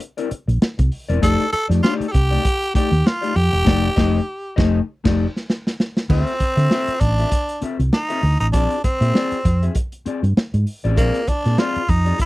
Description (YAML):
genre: funk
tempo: 98 BPM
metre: 4/4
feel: swing 56% on 16ths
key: unclear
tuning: A4 = 440 Hz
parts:
  - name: mellow electric guitar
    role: accompaniment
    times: 0.0-12.2 s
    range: A3 to E5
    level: -24 LUFS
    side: left 6 dB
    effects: none
  - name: crunchy breakbeat drum kit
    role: drums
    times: 0.0-12.3 s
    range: crash cymbal, hi-hat, kick drum, snare drum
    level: -19 LUFS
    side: equal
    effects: none
  - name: hollow-body short-scale fingered electric bass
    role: bass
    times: 0.3-12.1 s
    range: E1 to D3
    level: -18 LUFS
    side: equal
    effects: none
  - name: raspy tenor saxophone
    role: melody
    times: 1.2-12.3 s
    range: Bb3 to A4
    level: -22 LUFS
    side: right 1 dB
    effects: none
room: little or no reverb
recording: dry, close 1970s-style studio recording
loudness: -16 LUFS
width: side -18 dB against mid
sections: 0.0-6.1 A section; 6.1-12.3 B section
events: band accent 3.7-6.1; drum fill 4.9-6.1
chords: 0.0 C9; 1.2 F13; 6.1 Dm9; 8.5 Bb9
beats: 0.01 0.62 | 1.23 1.84 2.44 3.05 | 3.66 4.27 4.88 5.49 | 6.10 6.71 7.32 7.93 | 8.54 9.15 9.76 10.37 | 10.98 11.59 12.20